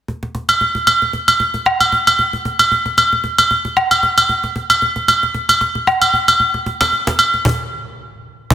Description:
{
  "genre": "amapiano",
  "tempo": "114 BPM",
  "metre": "4/4",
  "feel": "swing 55% on 16ths",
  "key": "none",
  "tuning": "none",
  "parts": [
    { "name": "cajon", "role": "drums", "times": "0.1-8.5 s", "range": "none", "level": "-22 LUFS", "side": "equal", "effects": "none" },
    { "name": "agogo bells and woodblock", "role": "percussion", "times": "0.5-7.3 s", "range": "none", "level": "-12 LUFS", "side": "equal", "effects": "none" }
  ],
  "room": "moderate lush hall reverb, RT60 2.4 s",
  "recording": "dense, heavily limited modern master",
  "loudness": "-12 LUFS",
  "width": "side -12 dB against mid",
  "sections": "0.1-8.5 A section",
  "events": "stop 7.5-8.5",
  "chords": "none",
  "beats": "| 0.08 0.61 1.14 1.66 | 2.19 2.71 3.24 3.77 | 4.29 4.82 5.35 5.87 | 6.40 6.93 7.45 7.98 | 8.51"
}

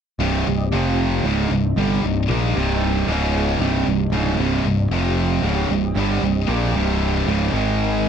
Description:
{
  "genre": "metal",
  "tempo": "115 BPM",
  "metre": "4/4",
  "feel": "straight",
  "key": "C minor",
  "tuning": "A4 = 444 Hz",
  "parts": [
    { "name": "analog string pad", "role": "sustained chords", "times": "0.2-8.1 s", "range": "C3 to Ab5", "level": "-28 LUFS", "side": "left 1 dB", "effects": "ensemble chorus" },
    { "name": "distorted electric guitar", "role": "riff", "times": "0.2-8.1 s", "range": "C2 to Bb3", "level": "-22 LUFS", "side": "right 9 dB", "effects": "distortion" },
    { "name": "heavy high-gain guitar", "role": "riff", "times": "0.2-8.1 s", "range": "C2 to Bb3", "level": "-24 LUFS", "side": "left 13 dB", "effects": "distortion" },
    { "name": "modern bright picked electric bass", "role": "bass", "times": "0.2-8.1 s", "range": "C1 to Bb1", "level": "-22 LUFS", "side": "left 1 dB", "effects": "none" }
  ],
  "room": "light reverb",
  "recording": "dry, close 1970s-style studio recording",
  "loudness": "-18 LUFS",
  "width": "side -8 dB against mid",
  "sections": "0.2-8.1 A section",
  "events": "none",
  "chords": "0.2 Cm; 0.7 F5; 1.2 Cm; 3.1 Db5; 3.6 Cm; 4.9 F5; 5.4 Cm; 7.5 Ab5",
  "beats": "| 0.20 0.72 1.25 1.77 | 2.29 2.82 3.34 3.87 | 4.39 4.91 5.44 5.96 | 6.48 7.01 7.53 8.05"
}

